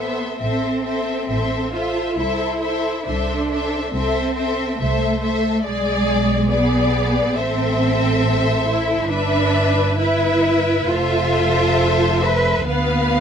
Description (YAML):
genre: classical, slow romantic movement for string orchestra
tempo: 69 BPM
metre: 4/4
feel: rubato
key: A minor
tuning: A4 = 440 Hz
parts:
  - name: warm symphonic violin section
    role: melody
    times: 0.0-13.2 s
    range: D5 to F5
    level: -25 LUFS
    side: left 1 dB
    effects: none
  - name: warm symphonic violin section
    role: second line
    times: 0.0-13.2 s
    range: B4 to D5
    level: -26 LUFS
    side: left 1 dB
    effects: none
  - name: warm symphonic viola section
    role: accompaniment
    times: 0.0-13.2 s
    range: G#4 to B4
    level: -25 LUFS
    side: left 2 dB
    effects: none
  - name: dark symphonic cello section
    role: bass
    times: 0.0-13.2 s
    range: G#3 to B4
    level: -21 LUFS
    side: right 1 dB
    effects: none
  - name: warm studio double bass section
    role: bass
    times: 0.0-13.2 s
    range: F1 to D2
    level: -23 LUFS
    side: right 1 dB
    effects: none
room: little or no reverb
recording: close, detailed microphones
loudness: -17 LUFS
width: side -7 dB against mid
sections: 0.0-13.2 A section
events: none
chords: 0.0 Am; 2.2 Am/C; 5.6 G#dim/B; 7.4 Am; 9.1 Em/G; 10.9 Fmaj7; 12.7 Bdim/D